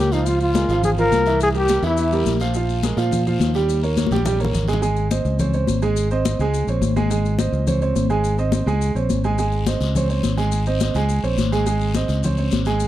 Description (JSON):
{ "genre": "latin, salsa", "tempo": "211 BPM", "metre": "4/4", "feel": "straight", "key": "Ab major", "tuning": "A4 = 440 Hz", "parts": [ { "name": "clear trombone", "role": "melody", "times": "0.0-2.4 s", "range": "Eb4 to Bb4", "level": "-20 LUFS", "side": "left 2 dB", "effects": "none" }, { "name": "clear upright piano", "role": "accompaniment", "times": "0.0-12.9 s", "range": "Fb3 to Ab5", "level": "-23 LUFS", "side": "right 5 dB", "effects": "none" }, { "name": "fingered electric bass", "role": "bass", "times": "0.0-12.9 s", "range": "Ab1 to Bb2", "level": "-21 LUFS", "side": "equal", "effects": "none" }, { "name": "guiro", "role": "percussion", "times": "0.1-4.8, 9.4-12.9 s", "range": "none", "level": "-35 LUFS", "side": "left 9 dB", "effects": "none" }, { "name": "maracas", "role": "percussion", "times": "0.1-12.9 s", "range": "none", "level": "-36 LUFS", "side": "left 15 dB", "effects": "none" }, { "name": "congas", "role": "percussion", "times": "0.3-12.9 s", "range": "none", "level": "-25 LUFS", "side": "left 5 dB", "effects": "none" } ], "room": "small room ambience", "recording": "dry, close 1970s-style studio recording", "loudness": "-17 LUFS", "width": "side -13 dB against mid", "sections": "0.0-4.8 A section; 4.8-12.9 B section", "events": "drum fill 4.0-4.8", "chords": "0.3 Db6; 1.4 C7; 2.5 Bb5; 3.7 Eb7; 4.8 Ab; 5.4 Db5; 6.0 Ab; 6.5 Db5; 7.1 Ab; 7.7 Db5; 8.2 Ab; 8.8 Db5; 9.4 Ab; 9.9 Db5; 10.5 Ab; 11.1 Db5; 11.7 Ab; 12.2 Db5" }